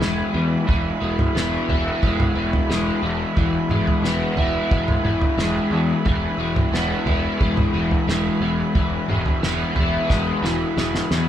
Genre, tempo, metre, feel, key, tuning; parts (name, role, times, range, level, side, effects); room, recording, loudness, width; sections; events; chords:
psychedelic rock; 89 BPM; 4/4; straight; E major; A4 = 440 Hz
combo organ; sustained chords; 0.0-11.3 s; E3 to B4; -30 LUFS; right 4 dB
crunchy overdriven guitar; riff; 0.0-11.3 s; E3 to E4; -22 LUFS; left 1 dB; rotary speaker
fuzz picked electric bass; bass; 0.0-11.3 s; E1 to E2; -26 LUFS; left 1 dB; overdrive
cloth-damped thuddy drum kit; drums; 0.0-11.3 s; kick drum, snare drum, toms; -22 LUFS; right 1 dB
moderate large studio reverb, RT60 1.1 s; band playing live in one room; -18 LUFS; side -10 dB against mid
0.0-11.3 A section
drum fill 10.1-11.3
0.0 E